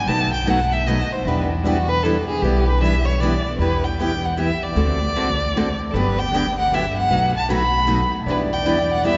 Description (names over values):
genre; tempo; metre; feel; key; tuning
acoustic string swing (jazz manouche); 154 BPM; 3/4; swing 63% on 8ths; E minor; A4 = 441 Hz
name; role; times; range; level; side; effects
warm violin; melody; 0.0-9.2 s; D4 to B5; -24 LUFS; equal; none
picked plugged-in steel-string acoustic guitar; accompaniment; 0.1-9.2 s; B2 to B4; -29 LUFS; equal; none
picked steel-string acoustic guitar; accompaniment; 0.1-9.2 s; B2 to A4; -27 LUFS; equal; none
upright bass; bass; 0.1-9.2 s; G1 to E2; -25 LUFS; equal; none
clear soprano saxophone; second line; 8.3-9.2 s; D5; -24 LUFS; equal; none
room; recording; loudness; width
wet cathedral reverb, RT60 6.0 s; recorded in a church or concert hall, nothing above 7.6 kHz; -20 LUFS; mono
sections
0.0-3.6 A section; 3.6-9.2 B section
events
violin solo 0.0-3.6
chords
0.1 B7; 1.3 Em7; 3.6 Em; 4.8 D7; 5.9 Gmaj7; 7.1 B7; 8.3 Em7